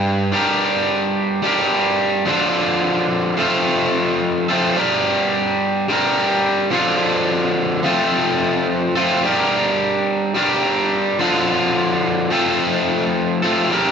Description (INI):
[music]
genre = rock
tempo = 108 BPM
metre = 4/4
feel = straight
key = G minor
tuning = A4 = 442 Hz
[part]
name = overdriven semi-hollow guitar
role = solo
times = 0.0-13.9 s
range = G2 to Bb4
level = -16 LUFS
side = equal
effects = none
[sound]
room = moderate large studio reverb, RT60 0.9 s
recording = band playing live in one room, nothing above 7.7 kHz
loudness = -16 LUFS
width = side -7 dB against mid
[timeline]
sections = 0.3-13.9 A section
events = none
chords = 0.3 Gm; 2.3 Dm; 3.4 F; 4.8 Gm; 6.7 Dm; 7.8 F; 9.2 Gm; 11.2 Dm; 12.3 F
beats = | 0.34 0.89 1.45 2.00 | 2.56 3.11 3.67 4.23 | 4.78 5.34 5.89 6.45 | 7.01 7.57 8.12 8.68 | 9.24 9.80 10.36 10.92 | 11.47 12.03 12.59 13.15 | 13.71